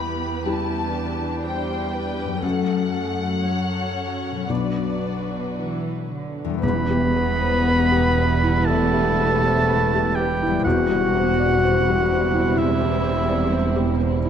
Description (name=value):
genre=cinematic, emotional film score for orchestra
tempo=56-63 BPM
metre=4/4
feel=rubato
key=E minor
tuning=A4 = 440 Hz
part: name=muted studio violin section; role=melody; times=0.0-14.3 s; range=E4 to B5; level=-33 LUFS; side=left 4 dB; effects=none
part: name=muted studio violin section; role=second line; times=0.0-14.3 s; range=B3 to C#5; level=-32 LUFS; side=equal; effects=none
part: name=felt-muted upright piano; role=accompaniment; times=0.0-14.3 s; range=B1 to D5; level=-27 LUFS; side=left 2 dB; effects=none
part: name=muted studio viola section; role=accompaniment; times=0.0-14.3 s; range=E3 to E4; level=-32 LUFS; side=right 2 dB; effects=none
part: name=concert harp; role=arpeggios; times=0.0-14.3 s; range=E2 to B5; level=-30 LUFS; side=left 9 dB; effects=none
part: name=muted studio cello section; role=bass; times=0.0-14.3 s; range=E2 to E3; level=-27 LUFS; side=right 4 dB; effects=none
part: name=mellow clarinet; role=second line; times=6.6-14.0 s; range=E4 to B4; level=-27 LUFS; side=left 1 dB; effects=none
part: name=warm oboe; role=second line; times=6.6-14.0 s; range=E5 to B5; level=-24 LUFS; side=right 3 dB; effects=none
part: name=mellow French horn section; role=sustained chords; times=6.6-14.0 s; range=E3 to F#4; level=-25 LUFS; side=left 5 dB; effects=none
part: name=muted studio double bass section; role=bass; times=6.6-14.3 s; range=E1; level=-26 LUFS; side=right 4 dB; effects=none
part: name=timpani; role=percussion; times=6.6-12.1 s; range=E2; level=-30 LUFS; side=right 2 dB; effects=none
room=moderate scoring stage reverb, RT60 1.8 s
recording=none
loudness=-19 LUFS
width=side -8 dB against mid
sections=0.0-6.6 A section; 6.6-14.3 B section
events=none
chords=0.0 Em; 2.4 F#m; 4.5 Bm; 6.6 Em; 10.6 C/E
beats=0.46 1.44 | 2.43 3.44 4.49 5.56 | 6.63 7.66 8.67 9.67 | 10.65 11.62 12.57 13.53